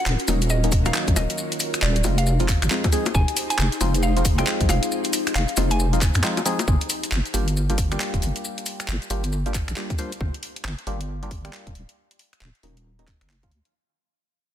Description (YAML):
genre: UK garage, two-step garage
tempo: 136 BPM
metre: 4/4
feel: swing 62% on 16ths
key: G phrygian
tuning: A4 = 440 Hz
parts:
  - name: mallet-like synth pluck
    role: melody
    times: 0.0-5.9 s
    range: D5 to Ab5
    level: -30 LUFS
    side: right 1 dB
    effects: chorus, ping-pong delay
  - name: ethereal airy pad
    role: sustained chords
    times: 0.0-6.6 s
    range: Db4 to C5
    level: -32 LUFS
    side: left 2 dB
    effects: ensemble chorus, built-in reverb, sidechain pumping
  - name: deep soft wobble bass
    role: bass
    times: 0.1-13.6 s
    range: D1 to F2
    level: -22 LUFS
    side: equal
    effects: chorus, sidechain pumping
  - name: garage drum kit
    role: drums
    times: 0.1-13.7 s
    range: bongos, finger snaps, handclaps, hi-hat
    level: -27 LUFS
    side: left 1 dB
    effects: studio reverb, soft clipping on snare
  - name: maracas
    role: percussion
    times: 0.1-10.2 s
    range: none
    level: -32 LUFS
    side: left 2 dB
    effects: none
  - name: percussive organ stab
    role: stabs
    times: 0.3-13.5 s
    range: Eb3 to C5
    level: -28 LUFS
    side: equal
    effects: chorus, phaser, digital delay
  - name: electronic kick drum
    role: drums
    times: 0.7-13.5 s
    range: none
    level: -22 LUFS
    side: equal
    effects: studio reverb
room: little or no reverb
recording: dense, heavily limited modern master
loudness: -20 LUFS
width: side -10 dB against mid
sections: 0.0-6.7 A section; 6.7-13.7 B section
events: drop 0.0-6.7; fade-out 6.7-13.7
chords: 0.0 Ebm7; 2.0 Fm7; 6.7 Gm7; 11.8 Ebm7